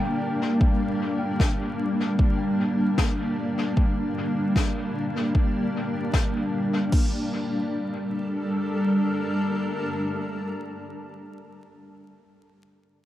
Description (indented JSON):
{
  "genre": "ambient dub",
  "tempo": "76 BPM",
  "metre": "4/4",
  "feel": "swing 57% on 16ths",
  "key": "G minor",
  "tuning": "A4 = 441 Hz",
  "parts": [
    { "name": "granular cloud pad", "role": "sustained chords", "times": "0.0-10.8 s", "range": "G3 to G5", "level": "-25 LUFS", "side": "equal", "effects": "built-in reverb" },
    { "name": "kalimba", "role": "arpeggios", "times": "0.0-1.4 s", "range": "G5", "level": "-39 LUFS", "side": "equal", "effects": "dub echo" },
    { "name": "deep house drum kit", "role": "drums", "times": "0.6-7.1 s", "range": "crash cymbal, kick drum", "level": "-22 LUFS", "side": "equal", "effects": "none" },
    { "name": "snare drum", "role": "drums", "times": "1.4-6.3 s", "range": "none", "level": "-35 LUFS", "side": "left 4 dB", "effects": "dub echo" }
  ],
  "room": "light reverb, small room ambience",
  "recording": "vinyl crackle",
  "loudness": "-23 LUFS",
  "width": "side -13 dB against mid",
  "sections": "0.0-6.9 A section; 6.9-10.1 B section",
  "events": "none",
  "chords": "0.0 Gm; 6.9 Gmadd9",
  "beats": "| 0.61 1.40 2.19 2.98 | 3.77 4.56 5.35 6.13 | 6.92 7.71 8.50 9.29"
}